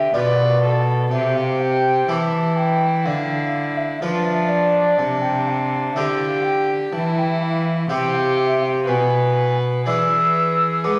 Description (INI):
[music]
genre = classical, baroque-style sonata movement with continuo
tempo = 62 BPM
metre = 4/4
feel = straight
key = C major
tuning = A4 = 440 Hz
[part]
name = mellow baroque flute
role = melody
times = 0.0-11.0 s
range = D5 to E6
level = -24 LUFS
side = equal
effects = none
[part]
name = warm violin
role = second line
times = 0.0-11.0 s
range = D4 to B4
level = -25 LUFS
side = equal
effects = none
[part]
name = harpsichord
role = accompaniment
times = 0.0-11.0 s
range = B2 to B4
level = -28 LUFS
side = equal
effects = none
[part]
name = rich cello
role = bass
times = 0.0-11.0 s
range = B2 to G#3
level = -25 LUFS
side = equal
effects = none
[sound]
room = wet recital hall reverb, RT60 1.4 s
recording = none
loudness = -19 LUFS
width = mono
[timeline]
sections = 0.0-11.0 A section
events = none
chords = 0.0 G7/B; 1.1 C; 3.1 Bdim/D; 5.0 C; 8.9 E7/B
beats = 0.14 | 1.12 2.09 3.06 4.02 | 4.99 5.96 6.93 7.90 | 8.87 9.87 10.84